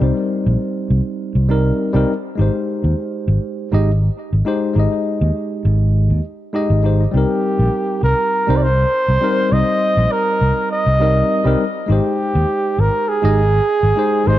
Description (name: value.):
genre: sunset chillout.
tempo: 101 BPM.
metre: 4/4.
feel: straight.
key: C minor.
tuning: A4 = 440 Hz.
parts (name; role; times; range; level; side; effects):
tine electric piano; accompaniment; 0.0-14.4 s; G3 to Eb5; -20 LUFS; moving between left 4 dB and right 6 dB; auto-pan, tape echo.
fingered electric bass; bass; 0.0-14.4 s; Ab1 to Eb2; -15 LUFS; equal; none.
breathy flugelhorn; melody; 7.1-14.4 s; G4 to Eb5; -17 LUFS; right 1 dB; ping-pong delay.
room: light reverb, small room ambience.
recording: dark, warm production.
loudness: -14 LUFS.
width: side -13 dB against mid.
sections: 0.0-14.4 A section.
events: none.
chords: 0.0 Cm7; 2.4 Abmaj7; 7.1 Cm7; 11.9 Abmaj7.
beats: | 0.01 0.61 1.20 1.79 | 2.39 2.98 3.58 4.17 | 4.76 5.36 5.95 6.55 | 7.14 7.74 8.33 8.92 | 9.52 10.11 10.71 11.30 | 11.89 12.49 13.08 13.68 | 14.27.